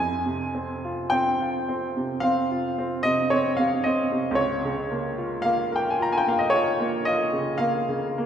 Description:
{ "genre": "classical, romantic nocturne for solo piano", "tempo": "48-57 BPM", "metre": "4/4", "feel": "rubato", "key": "F minor", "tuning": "A4 = 440 Hz", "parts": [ { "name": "bright baby grand piano", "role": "solo", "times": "0.0-8.3 s", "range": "Db2 to Bb5", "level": "-22 LUFS", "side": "equal", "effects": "none" } ], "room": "wet church reverb, RT60 2.6 s", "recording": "recorded in a church or concert hall", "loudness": "-22 LUFS", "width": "side -8 dB against mid", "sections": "0.0-8.3 A section", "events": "none", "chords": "0.0 Fm; 4.4 Bbm/Db", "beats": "1.10 2.22 3.31 | 4.37 5.44 6.52 7.58" }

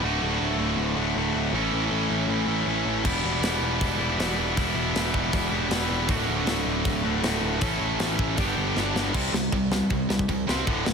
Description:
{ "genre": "punk rock", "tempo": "158 BPM", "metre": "4/4", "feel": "straight", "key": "D major", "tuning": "A4 = 440 Hz", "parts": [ { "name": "tight distorted guitar", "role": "riff", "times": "0.0-10.9 s", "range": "D2 to A4", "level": "-28 LUFS", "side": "left 16 dB", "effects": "distortion" }, { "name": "tight distorted guitar", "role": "riff", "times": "0.0-10.9 s", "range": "D2 to A4", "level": "-27 LUFS", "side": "right 14 dB", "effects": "distortion" }, { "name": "fuzz picked electric bass", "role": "bass", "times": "0.0-10.9 s", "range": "D1 to C2", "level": "-30 LUFS", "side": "equal", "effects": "overdrive" }, { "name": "tight metal drum kit", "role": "drums", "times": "3.0-10.9 s", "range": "crash cymbal, hi-hat, kick drum, snare drum", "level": "-29 LUFS", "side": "equal", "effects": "none" } ], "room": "little or no reverb", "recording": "none", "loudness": "-22 LUFS", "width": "side -6 dB against mid", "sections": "0.0-9.1 A section; 9.1-10.9 B section", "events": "half time 0.0-9.1; drum fill 8.8-9.1", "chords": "0.0 D; 1.5 A; 3.1 Em; 6.1 D; 7.6 A; 8.4 G; 9.1 C5", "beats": "| 0.03 0.40 0.78 1.16 | 1.54 1.92 2.29 2.67 | 3.05 3.43 3.81 4.19 | 4.57 4.95 5.33 5.71 | 6.09 6.47 6.85 7.24 | 7.62 8.00 8.38 8.76 | 9.14 9.53 9.91 10.29 | 10.67" }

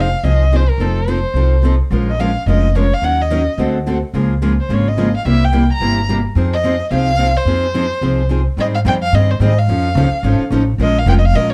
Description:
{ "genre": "acoustic string swing (jazz manouche)", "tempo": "216 BPM", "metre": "4/4", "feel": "swing 57% on 8ths", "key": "F minor", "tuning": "A4 = 441 Hz", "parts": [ { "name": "warm violin", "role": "melody", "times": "0.0-11.5 s", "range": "A4 to Bb5", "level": "-22 LUFS", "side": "equal", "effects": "none" }, { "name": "picked steel-string acoustic guitar", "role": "accompaniment", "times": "0.0-11.5 s", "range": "C3 to Bb4", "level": "-23 LUFS", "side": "equal", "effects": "none" }, { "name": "picked steel-string acoustic guitar", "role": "accompaniment", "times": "0.0-11.5 s", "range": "C3 to Bb4", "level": "-24 LUFS", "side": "equal", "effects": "none" }, { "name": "upright bass", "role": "bass", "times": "0.0-11.5 s", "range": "F1 to Ab2", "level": "-18 LUFS", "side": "equal", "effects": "none" } ], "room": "light reverb", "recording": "dark, warm production", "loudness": "-15 LUFS", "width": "mono", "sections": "0.0-8.6 A section; 8.6-11.5 B section", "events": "none", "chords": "0.0 Fm7; 0.8 F7; 1.9 Bbm7; 3.0 Ebm7; 3.6 D7; 4.1 Db6; 5.2 C7; 6.4 Fm7; 8.6 Abmaj7; 9.7 F7alt; 10.8 Bbm7", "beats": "0.24 0.52 | 0.80 1.08 1.36 1.64 | 1.91 2.19 2.47 2.75 | 3.02 3.30 3.58 3.86 | 4.14 4.41 4.69 4.97 | 5.25 5.53 5.80 6.08 | 6.36 6.63 6.91 7.19 | 7.47 7.75 8.02 8.30 | 8.58 8.85 9.13 9.41 | 9.68 9.96 10.24 10.51 | 10.79 11.07 11.34" }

